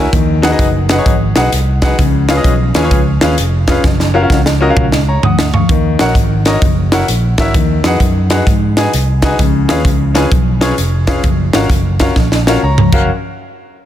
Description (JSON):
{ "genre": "uptempo gospel", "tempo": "130 BPM", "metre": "4/4", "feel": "swing 65% on 8ths", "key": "F# major", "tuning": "A4 = 440 Hz", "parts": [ { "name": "clear grand piano", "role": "accompaniment", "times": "0.0-13.1 s", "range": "F#2 to D#6", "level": "-16 LUFS", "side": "left 2 dB", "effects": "none" }, { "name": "fingered electric bass", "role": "bass", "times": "0.0-13.1 s", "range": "E#1 to G#2", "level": "-14 LUFS", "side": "equal", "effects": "none" }, { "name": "crisp fusion drum kit", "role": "drums", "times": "0.1-13.0 s", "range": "crash cymbal, hi-hat, kick drum, snare drum, toms", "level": "-13 LUFS", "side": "equal", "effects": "none" } ], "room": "small room ambience", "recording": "dense, heavily limited modern master", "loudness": "-10 LUFS", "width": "side -11 dB against mid", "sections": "0.0-5.7 A section; 5.7-13.1 B section", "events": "drum fill 3.8-5.7, 12.2-13.1", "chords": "0.1 B6; 2.0 C#7; 3.8 F#maj7; 5.7 D#m7; 6.6 F#7; 7.5 B6/D#; 9.4 C#7; 11.2 F#maj7; 13.1 N.C.", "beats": "| 0.12 0.59 1.06 1.52 | 1.99 2.45 2.92 3.38 | 3.85 4.31 4.77 5.24 | 5.70 6.16 6.62 7.09 | 7.55 8.01 8.47 8.93 | 9.39 9.86 10.32 10.78 | 11.24 11.71 12.17 12.63" }